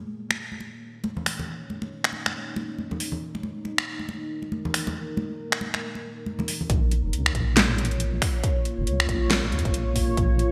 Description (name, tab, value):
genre	deep dubstep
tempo	138 BPM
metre	4/4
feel	swing 60% on 16ths, half-time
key	Bb minor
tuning	A4 = 437 Hz
part	deep dark ambient pad	sustained chords	0.0-10.5 s	Bb3 to Db5	-36 LUFS	equal	chorus, built-in reverb
part	dubstep drum kit	drums	0.3-10.5 s	finger snaps, hi-hat, snare drum	-28 LUFS	equal	small room ambience, gated reverb
part	congas	percussion	0.3-6.7 s	none	-35 LUFS	equal	none
part	deep soft wobble bass	bass	6.7-10.5 s	F1 to Eb2	-28 LUFS	equal	chorus
part	electronic kick drum	drums	6.7-10.3 s	none	-27 LUFS	equal	small room ambience
room	moderate lush hall reverb, RT60 1.9 s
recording	bright 1980s-style digital production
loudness	-26 LUFS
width	mono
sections	0.0-6.7 A section; 6.7-10.5 B section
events	filter sweep on ambient pad 0.0-6.7; drop 6.7-10.5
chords	0.0 Bbm